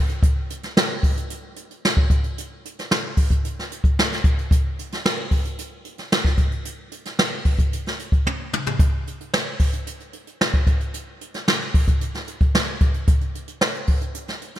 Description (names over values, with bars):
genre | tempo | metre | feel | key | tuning
pop | 112 BPM | 4/4 | straight | none | none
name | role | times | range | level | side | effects
jazz brush drum kit | drums | 0.1-14.6 s | hi-hat, kick drum, snare drum, toms | -19 LUFS | equal | gated reverb
room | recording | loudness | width
little or no reverb | bright 1980s-style digital production | -19 LUFS | side -12 dB against mid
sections
0.2-14.6 A section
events
drum fill 8.3-8.8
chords
none